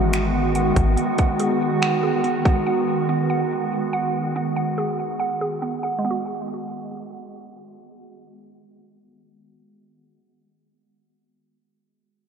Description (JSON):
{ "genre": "hip hop, atmospheric cloud-rap", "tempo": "142 BPM", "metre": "4/4", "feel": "half-time", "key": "G# minor", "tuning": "A4 = 438 Hz", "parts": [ { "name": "glassy FM pad", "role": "sustained chords", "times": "0.0-4.3 s", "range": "D#3 to F#4", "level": "-22 LUFS", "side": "right 1 dB", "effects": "ensemble chorus, built-in reverb, sidechain pumping" }, { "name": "mallet-like synth pluck", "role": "arpeggios", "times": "0.0-10.2 s", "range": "G#3 to F#5", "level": "-27 LUFS", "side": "right 2 dB", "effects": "chorus, tape echo" }, { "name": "soft 808-style bass", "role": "bass", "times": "0.0-1.0 s", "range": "G#1", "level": "-22 LUFS", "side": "equal", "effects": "none" }, { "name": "trap drum kit", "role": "drums", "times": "0.1-2.6 s", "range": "finger snaps, hi-hat, kick drum", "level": "-23 LUFS", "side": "equal", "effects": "overdrive" } ], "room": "wet cathedral reverb, RT60 7.2 s", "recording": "dreamy mix soaked in reverb, low-pass filter", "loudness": "-20 LUFS", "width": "side -6 dB against mid", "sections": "0.0-6.0 A section; 6.0-9.4 B section", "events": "filter sweep 0.0-6.0", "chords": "0.0 G#m7" }